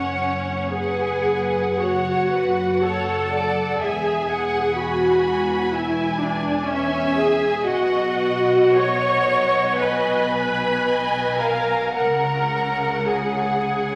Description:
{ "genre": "classical, slow romantic movement for string orchestra", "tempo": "48-64 BPM", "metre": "4/4", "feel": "rubato", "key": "unclear", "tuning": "A4 = 439 Hz", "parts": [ { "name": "warm symphonic violin section", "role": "melody", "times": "0.0-14.0 s", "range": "C#5 to C#6", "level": "-34 LUFS", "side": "equal", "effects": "none" }, { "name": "rich symphonic violin section", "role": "second line", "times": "0.0-14.0 s", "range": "B4 to B5", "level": "-27 LUFS", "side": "equal", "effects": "none" }, { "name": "rich symphonic viola section", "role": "accompaniment", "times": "0.0-14.0 s", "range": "C#4 to C#5", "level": "-23 LUFS", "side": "equal", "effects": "none" }, { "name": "rich symphonic cello section", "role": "bass", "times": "0.0-14.0 s", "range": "E2 to C#3", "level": "-34 LUFS", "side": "equal", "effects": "none" }, { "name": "rich symphonic double bass section", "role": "bass", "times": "0.0-14.0 s", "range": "E1 to C#2", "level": "-34 LUFS", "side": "equal", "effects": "none" } ], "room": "wet scoring stage reverb, RT60 1.8 s", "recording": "vinyl crackle", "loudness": "-21 LUFS", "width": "mono", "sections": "0.0-14.0 A section", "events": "none", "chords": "0.0 F#m; 3.8 E; 7.7 G#m7/B; 12.0 C#sus4" }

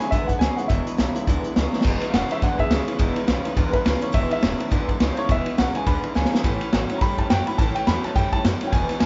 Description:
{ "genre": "rockabilly", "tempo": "209 BPM", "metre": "4/4", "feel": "swing 59% on 8ths", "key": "E mixolydian", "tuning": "A4 = 440 Hz", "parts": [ { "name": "warm upright piano", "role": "melody", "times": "0.0-9.1 s", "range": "G#4 to B5", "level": "-29 LUFS", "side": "equal", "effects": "none" }, { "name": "picked steel-string acoustic guitar", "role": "accompaniment", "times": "0.0-9.1 s", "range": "E2 to E4", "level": "-32 LUFS", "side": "equal", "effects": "none" }, { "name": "electric guitar through a small old amp", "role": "riff", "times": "0.0-9.1 s", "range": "E2 to G3", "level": "-31 LUFS", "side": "equal", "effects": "none" }, { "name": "upright bass", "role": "bass", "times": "0.0-9.1 s", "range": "E1 to F#2", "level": "-31 LUFS", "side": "equal", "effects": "none" }, { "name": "vintage drum kit", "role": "drums", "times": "0.0-9.1 s", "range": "crash cymbal, hi-hat, kick drum, ride cymbal, snare drum", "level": "-25 LUFS", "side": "equal", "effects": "none" } ], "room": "light reverb", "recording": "band playing live in one room, nothing above 7.6 kHz", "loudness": "-22 LUFS", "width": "mono", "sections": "0.0-1.9 A section; 1.9-9.1 B section", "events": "drum fill 1.7, 6.2; upright piano solo 1.9-9.1", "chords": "0.0 E; 6.4 A" }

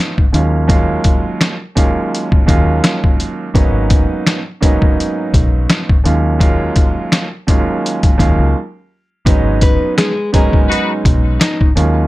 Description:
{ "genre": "hip hop, boom-bap hip-hop", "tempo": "84 BPM", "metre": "4/4", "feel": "swing 56% on 16ths", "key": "G# dorian", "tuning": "A4 = 438 Hz", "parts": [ { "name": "dark baby grand piano", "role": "accompaniment", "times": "0.0-12.1 s", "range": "D#2 to A#4", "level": "-17 LUFS", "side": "right 2 dB", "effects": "cassette tape, high-pass filter, low-pass filter" }, { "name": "trip hop sampler-style drum kit", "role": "drums", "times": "0.2-12.0 s", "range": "hi-hat, kick drum, snare drum", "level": "-12 LUFS", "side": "equal", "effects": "none" }, { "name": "deep dub fingered electric bass", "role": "bass", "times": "0.3-12.1 s", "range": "G#1 to D#2", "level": "-15 LUFS", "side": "equal", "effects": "none" }, { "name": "nylon-string guitar", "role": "melody", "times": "9.6-11.7 s", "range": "G#3 to D#5", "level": "-20 LUFS", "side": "left 2 dB", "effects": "high-pass filter, low-pass filter, ping-pong delay" }, { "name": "warm horn section", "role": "stabs", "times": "10.7-10.9 s", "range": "D#4 to B4", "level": "-19 LUFS", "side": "left 3 dB", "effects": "high-pass filter, low-pass filter, ping-pong delay" } ], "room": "little or no reverb", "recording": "none", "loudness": "-11 LUFS", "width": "side -18 dB against mid", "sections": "0.0-9.3 A section; 9.3-12.1 B section", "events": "break 8.6-9.3", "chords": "0.3 D#m11; 3.5 G#m11; 6.0 D#m11; 9.3 G#m11" }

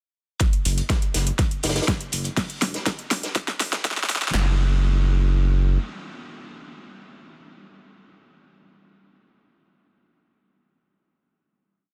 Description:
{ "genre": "progressive house", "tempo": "122 BPM", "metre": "4/4", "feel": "straight", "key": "unclear", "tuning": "A4 = 440 Hz", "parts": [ { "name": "deep house drum kit", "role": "drums", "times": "0.4-4.5 s", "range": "handclaps, kick drum, snare drum", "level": "-26 LUFS", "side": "equal", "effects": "overdrive" }, { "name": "deep house drum kit", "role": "drums", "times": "0.4-4.4 s", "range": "hi-hat, snare drum", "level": "-29 LUFS", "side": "equal", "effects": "none" }, { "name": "vintage drum kit", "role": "drums", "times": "0.4-4.3 s", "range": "hi-hat, snare drum", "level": "-33 LUFS", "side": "equal", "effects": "sidechain pumping on hats, high-pass filter on hats, high-pass filter on snare, high-pass filter on room" }, { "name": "saturated sub bass", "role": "bass", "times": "0.7-5.8 s", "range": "E1 to F#1", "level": "-23 LUFS", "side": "equal", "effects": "sidechain pumping" } ], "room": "light reverb, small room ambience", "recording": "dense, heavily limited modern master, high-pass filter", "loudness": "-23 LUFS", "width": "mono", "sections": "0.4-4.3 build; 4.3-8.3 final note", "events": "build-up 0.4-4.3; drum fill 0.4-4.3; filter sweep 0.4-4.3", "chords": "none" }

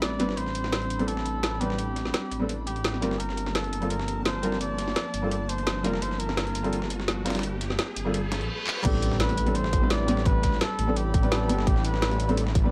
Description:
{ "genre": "liquid drum and bass", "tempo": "170 BPM", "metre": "4/4", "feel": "straight", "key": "unclear", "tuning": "A4 = 436 Hz", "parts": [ { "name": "trumpet with cup mute", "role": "melody", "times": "0.0-12.3 s", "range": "G4 to D5", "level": "-36 LUFS", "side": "equal", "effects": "digital delay" }, { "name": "airy breathy pad", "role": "sustained chords", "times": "0.0-12.7 s", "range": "F3 to B5", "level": "-40 LUFS", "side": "equal", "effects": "chorus, sidechain pumping" }, { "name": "swelling detuned saw bass", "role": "bass", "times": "0.0-12.7 s", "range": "F1 to Bb1", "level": "-32 LUFS", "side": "equal", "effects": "none" }, { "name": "drum and bass drum kit", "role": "drums", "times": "0.0-12.6 s", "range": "crash cymbal, handclaps, hi-hat, snare drum", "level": "-33 LUFS", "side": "equal", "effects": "none" }, { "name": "dusty soul sampler-style drum kit", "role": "drums", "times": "0.0-12.6 s", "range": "hi-hat, snare drum", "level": "-39 LUFS", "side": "equal", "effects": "high-pass filter on hats, high-pass filter on snare" }, { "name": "riser, reverse cymbal and impact", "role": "sound effects", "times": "2.6-10.3 s", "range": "none", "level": "-40 LUFS", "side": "equal", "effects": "none" }, { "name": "felt-muted upright piano", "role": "accompaniment", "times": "0.2-12.7 s", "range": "G3 to B4", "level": "-33 LUFS", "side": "equal", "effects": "none" }, { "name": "electronic kick drum", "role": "drums", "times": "8.8-12.6 s", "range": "none", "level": "-26 LUFS", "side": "equal", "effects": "none" } ], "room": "light reverb", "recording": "dark, warm production", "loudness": "-27 LUFS", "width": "mono", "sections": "0.0-8.8 A section; 8.8-12.7 B section", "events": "build-up 0.0-8.8; reverse cymbal 8.1-8.8; drum fill 8.7; drop 8.8-12.7; impact 8.8-10.3", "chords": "0.0 Am11; 3.0 Gm11; 8.8 Am11" }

